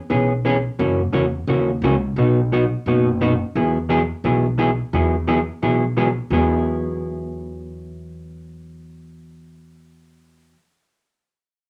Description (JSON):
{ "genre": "country, western swing", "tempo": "174 BPM", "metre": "4/4", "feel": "swing 64% on 8ths", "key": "E major", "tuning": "A4 = 435 Hz", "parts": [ { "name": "hollow-body jazz guitar", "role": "accompaniment", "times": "0.1-10.6 s", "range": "B2 to G#4", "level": "-22 LUFS", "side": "equal", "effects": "none" }, { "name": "upright bass", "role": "bass", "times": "0.1-10.5 s", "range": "F#1 to F#2", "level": "-27 LUFS", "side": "equal", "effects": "none" } ], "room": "wet studio reverb, RT60 0.6 s", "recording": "none", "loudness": "-20 LUFS", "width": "mono", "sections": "0.0-4.9 A section; 4.9-6.3 B section; 6.3-9.1 C section", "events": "none", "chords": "0.0 E6; 0.8 F#7; 2.2 B; 3.5 Eadd9" }